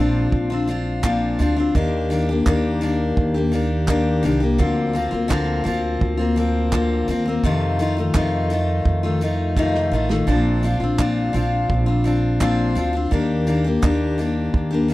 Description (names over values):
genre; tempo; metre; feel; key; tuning
acoustic pop; 84 BPM; 4/4; straight; Bb major; A4 = 441 Hz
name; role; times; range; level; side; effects
picked steel-string acoustic guitar; accompaniment; 0.0-14.9 s; F2 to G4; -20 LUFS; left 2 dB; none
upright bass; bass; 0.0-14.9 s; A1 to F2; -22 LUFS; right 1 dB; none
natural country drum kit; drums; 0.3-14.9 s; handclaps, kick drum, snare drum, tambourine; -22 LUFS; right 1 dB; none
room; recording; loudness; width
little or no reverb; dry, close 1970s-style studio recording; -18 LUFS; side -17 dB against mid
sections
0.0-14.9 A section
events
drum fill 9.6-10.3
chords
0.0 Bbadd9; 1.8 Ebmaj7; 4.6 Bbadd9/D; 7.4 F7; 10.3 Bbadd9; 13.1 Ebmaj7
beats
0.33 1.04 | 1.75 2.46 3.17 3.88 | 4.59 5.30 6.01 6.73 | 7.44 8.15 8.86 9.57 | 10.28 10.99 11.70 12.41 | 13.12 13.83 14.54